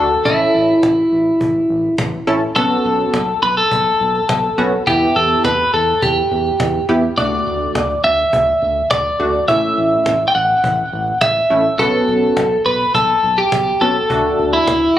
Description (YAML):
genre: synth-pop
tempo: 104 BPM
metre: 4/4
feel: straight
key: D major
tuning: A4 = 440 Hz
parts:
  - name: twelve-string electric guitar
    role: melody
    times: 0.0-15.0 s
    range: E4 to G5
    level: -14 LUFS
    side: equal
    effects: digital delay
  - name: funky polysynth comp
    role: accompaniment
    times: 0.0-14.7 s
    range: A3 to A4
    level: -18 LUFS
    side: right 1 dB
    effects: chorus
  - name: round analog bass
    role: bass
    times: 0.0-15.0 s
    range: A1 to E2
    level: -25 LUFS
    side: equal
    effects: none
  - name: cajon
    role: drums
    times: 0.1-15.0 s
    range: none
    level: -24 LUFS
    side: equal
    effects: none
room: moderate lush hall reverb, RT60 2.1 s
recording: recorded on a phone in the room, club reverb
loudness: -13 LUFS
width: side -12 dB against mid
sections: 0.0-15.0 A section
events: none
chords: 0.3 A; 2.6 Bsus2; 4.9 Em; 7.2 D; 9.5 A6; 11.8 Bsus2; 14.1 D